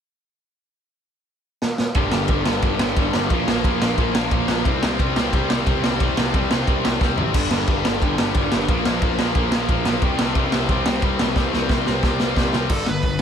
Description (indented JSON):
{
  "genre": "punk rock",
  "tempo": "178 BPM",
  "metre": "4/4",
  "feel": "straight",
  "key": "unclear",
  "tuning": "A4 = 440 Hz",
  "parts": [
    { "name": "raw garage drum kit", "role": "drums", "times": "1.6-13.2 s", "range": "crash cymbal, hi-hat, kick drum, ride cymbal, snare drum, toms", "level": "-20 LUFS", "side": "right 1 dB", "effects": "none" },
    { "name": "distorted electric guitar", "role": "riff", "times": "2.0-13.2 s", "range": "G2 to C4", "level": "-24 LUFS", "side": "left 16 dB", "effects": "overdrive" },
    { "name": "raw garage guitar", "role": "riff", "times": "2.0-12.7 s", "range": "G2 to C4", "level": "-26 LUFS", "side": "right 16 dB", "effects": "overdrive" },
    { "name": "fuzz picked electric bass", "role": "bass", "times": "2.0-13.2 s", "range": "G1 to C2", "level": "-26 LUFS", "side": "equal", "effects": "overdrive" },
    { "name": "dark smooth lead guitar", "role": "melody", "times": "12.7-13.2 s", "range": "A4 to B4", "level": "-26 LUFS", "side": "right 3 dB", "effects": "overdrive" }
  ],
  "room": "little or no reverb",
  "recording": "none",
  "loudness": "-18 LUFS",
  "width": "side -8 dB against mid",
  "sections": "0.6-2.0 A section; 2.0-12.7 B section",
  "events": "drum fill 1.6-2.0, 7.0-7.3, 11.4-12.7",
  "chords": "0.6 N.C.; 2.0 G5; 3.3 Bb5; 4.7 C5; 7.3 G5; 8.7 Bb5; 10.0 C5; 12.7 G"
}